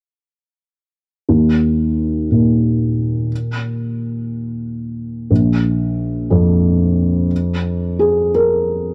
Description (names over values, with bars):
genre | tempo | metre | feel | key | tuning
classical | 60 BPM (dotted quarters) | 6/8 | rubato | unclear | A4 = 440 Hz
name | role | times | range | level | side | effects
felt-muted upright piano | accompaniment | 1.3-8.9 s | Bb1 to Bb4 | -17 LUFS | equal | none
room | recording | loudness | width
small room ambience | dry, close 1970s-style studio recording | -17 LUFS | mono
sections
1.3-8.9 A section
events
none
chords
1.3 Eb5; 5.3 Bb5